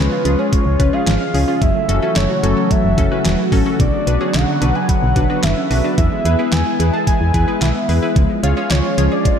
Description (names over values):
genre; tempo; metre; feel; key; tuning
synth-pop; 110 BPM; 4/4; straight; F# minor; A4 = 440 Hz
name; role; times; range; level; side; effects
fat analog lead; melody; 0.0-9.4 s; B4 to A5; -22 LUFS; equal; chorus, tape echo
funky polysynth comp; accompaniment; 0.0-9.2 s; C#4 to C#5; -23 LUFS; left 3 dB; chorus
phased analog pad; sustained chords; 0.0-9.4 s; C#3 to F#4; -21 LUFS; left 1 dB; phaser, chorus
analog pluck; arpeggios; 0.0-9.4 s; D3 to B4; -24 LUFS; right 4 dB; chorus, tape echo
solid FM bass; bass; 0.0-9.1 s; E1 to E2; -17 LUFS; equal; none
detuned 8-bit digital drum machine; drums; 0.3-9.4 s; handclaps, hi-hat, kick drum, snare drum; -19 LUFS; equal; overdrive
room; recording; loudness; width
moderate lush hall reverb, RT60 1.9 s; dreamy mix soaked in reverb; -14 LUFS; side -8 dB against mid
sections
0.0-9.4 A section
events
none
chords
0.0 C#; 1.6 F#m7; 3.8 Bmadd9; 6.0 E; 8.2 C#